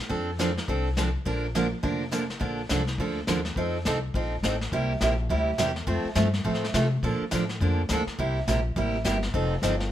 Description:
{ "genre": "country, western swing", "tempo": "208 BPM", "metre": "4/4", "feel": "swing 61% on 8ths", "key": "Bb major", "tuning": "A4 = 437 Hz", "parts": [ { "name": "picked steel-string acoustic guitar", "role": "accompaniment", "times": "0.1-9.7 s", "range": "C3 to Bb4", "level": "-27 LUFS", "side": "right 2 dB", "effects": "none" }, { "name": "upright bass", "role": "bass", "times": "0.1-9.9 s", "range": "F1 to C3", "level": "-29 LUFS", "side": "left 1 dB", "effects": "none" }, { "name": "vintage brush drum kit", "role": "drums", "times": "0.1-9.9 s", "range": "brushed snare drum, hi-hat, kick drum, snare drum", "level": "-33 LUFS", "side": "left 1 dB", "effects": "none" } ], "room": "light reverb", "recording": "none", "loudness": "-24 LUFS", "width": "side -12 dB against mid", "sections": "0.0-2.4 A section; 2.4-9.9 B section", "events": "none", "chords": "0.1 F6; 1.3 Bb; 2.4 Bbmaj7; 3.6 F7; 4.7 C7; 5.9 F; 7.0 Bbmaj7; 8.2 C7; 9.3 F7" }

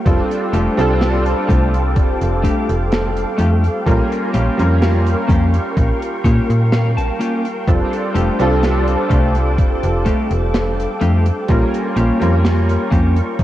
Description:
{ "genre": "vaporwave", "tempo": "63 BPM", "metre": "4/4", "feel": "straight", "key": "F major", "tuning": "A4 = 436 Hz", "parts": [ { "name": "clear electric grand piano", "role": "accompaniment", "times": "0.0-13.4 s", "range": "G3 to Bb4", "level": "-20 LUFS", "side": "right 1 dB", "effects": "ensemble chorus, analog delay" }, { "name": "soft string machine", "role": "sustained chords", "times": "0.0-13.4 s", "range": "A4 to D6", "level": "-25 LUFS", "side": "equal", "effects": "ensemble chorus" }, { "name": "slap-like FM bass", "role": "bass", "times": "0.1-13.4 s", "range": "F1 to Bb2", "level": "-16 LUFS", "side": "equal", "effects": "none" }, { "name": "electronic kick drum", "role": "drums", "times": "0.1-13.4 s", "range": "none", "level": "-16 LUFS", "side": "equal", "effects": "overdrive" }, { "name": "modern studio drum kit", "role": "drums", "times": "0.1-13.4 s", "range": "hi-hat, snare drum", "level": "-25 LUFS", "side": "right 1 dB", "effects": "none" }, { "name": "clean electric guitar", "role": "riff", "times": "0.5-13.2 s", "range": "A3 to A5", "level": "-24 LUFS", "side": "left 2 dB", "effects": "analog chorus, analog delay" } ], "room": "moderate plate reverb, RT60 2.7 s", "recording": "dreamy mix soaked in reverb, cassette tape", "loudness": "-14 LUFS", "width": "side -13 dB against mid", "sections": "0.0-13.4 A section", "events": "clean electric guitar fill 5.8-7.7", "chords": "0.1 F69; 3.9 Bbm6; 7.7 F69; 11.5 Bbm6" }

